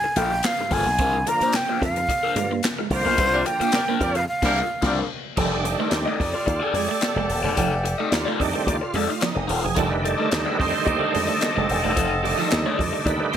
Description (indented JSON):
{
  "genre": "funk",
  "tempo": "109 BPM",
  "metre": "4/4",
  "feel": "straight",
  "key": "F mixolydian",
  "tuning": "A4 = 440 Hz",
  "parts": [
    { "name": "breathy jazz flute", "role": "melody", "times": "0.0-5.1 s", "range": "C5 to Bb5", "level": "-23 LUFS", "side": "equal", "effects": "none" },
    { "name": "raw garage guitar", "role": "accompaniment", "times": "0.0-13.4 s", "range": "Bb3 to Eb5", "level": "-28 LUFS", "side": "left 7 dB", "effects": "overdrive, phaser" },
    { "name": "bright tonewheel organ", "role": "stabs", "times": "0.0-13.4 s", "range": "G2 to C5", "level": "-27 LUFS", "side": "right 5 dB", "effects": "overdrive, chorus vibrato, slow rotary speaker" },
    { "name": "slap bass with an envelope filter", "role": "bass", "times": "0.2-13.4 s", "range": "Eb1 to G2", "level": "-26 LUFS", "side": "equal", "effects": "none" },
    { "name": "swinging big-band drum kit", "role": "drums", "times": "0.2-13.4 s", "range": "crash cymbal, handclaps, hi-hat, kick drum, snare drum", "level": "-28 LUFS", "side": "left 1 dB", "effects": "none" },
    { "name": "electric guitar at the edge of break-up", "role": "riff", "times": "1.0-13.1 s", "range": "F3 to C4", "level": "-30 LUFS", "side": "right 9 dB", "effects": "tremolo" },
    { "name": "clear horn section", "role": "second line", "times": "3.3-13.4 s", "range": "G4 to Eb5", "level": "-27 LUFS", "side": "equal", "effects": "none" }
  ],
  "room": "light reverb",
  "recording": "none",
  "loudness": "-20 LUFS",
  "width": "side -9 dB against mid",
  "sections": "0.0-5.4 A section; 5.4-13.4 B section",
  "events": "band accent 3.2-5.4; tonewheel organ solo 5.4-13.4",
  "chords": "0.0 Gm9; 1.0 C9sus4; 5.4 F13"
}